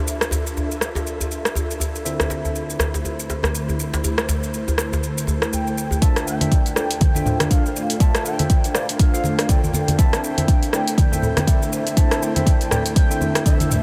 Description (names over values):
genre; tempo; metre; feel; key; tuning
afro house; 121 BPM; 4/4; swing 58% on 16ths; D dorian; A4 = 440 Hz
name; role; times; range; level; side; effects
ethereal airy pad; sustained chords; 0.0-13.8 s; D3 to B5; -32 LUFS; equal; ensemble chorus, built-in reverb, sidechain pumping
tine electric piano; stabs; 0.0-13.6 s; D3 to F5; -32 LUFS; equal; subtle chorus, sidechain pumping, tape echo
deep house drum kit; drums; 0.1-13.8 s; hi-hat, rim click, shaker; -27 LUFS; equal; overdrive
djembe; percussion; 0.3-6.0 s; none; -27 LUFS; equal; none
expressive synth lead; melody; 5.5-13.8 s; E5 to A5; -31 LUFS; equal; ensemble chorus, cassette tape, tape echo
marimba with soft mallets; arpeggios; 6.0-13.8 s; A3 to D5; -31 LUFS; equal; sidechain pumping
electronic kick drum; drums; 6.0-13.6 s; none; -19 LUFS; equal; none
congas; percussion; 6.4-13.8 s; none; -27 LUFS; equal; none
room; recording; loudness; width
moderate huge ambient reverb, RT60 8.1 s; dreamy mix soaked in reverb; -20 LUFS; mono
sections
0.0-6.0 A section; 6.0-13.8 B section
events
build-up 6.0-13.8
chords
0.0 Dm9; 2.1 Am/D; 6.0 Dm9; 10.0 Am/D